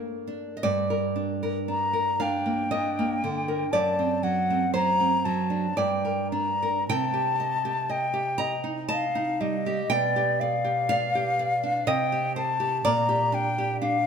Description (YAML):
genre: romantic duo for flute and classical guitar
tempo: 50-62 BPM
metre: 3/4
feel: rubato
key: G minor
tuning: A4 = 442 Hz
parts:
  - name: nylon-string guitar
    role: accompaniment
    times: 0.0-14.1 s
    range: F#2 to Bb5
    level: -26 LUFS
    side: right 2 dB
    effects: none
  - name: silver concert flute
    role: melody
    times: 1.7-14.1 s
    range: D5 to Bb5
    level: -26 LUFS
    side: left 3 dB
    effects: none
room: moderate concert hall reverb, RT60 1.9 s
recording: none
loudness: -23 LUFS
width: side -6 dB against mid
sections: 0.6-14.1 A section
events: none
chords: 0.0 Gm; 3.7 D7/F#; 5.8 Gm; 6.9 Cm; 9.9 G7/B; 11.9 Cm; 12.8 Gm/Bb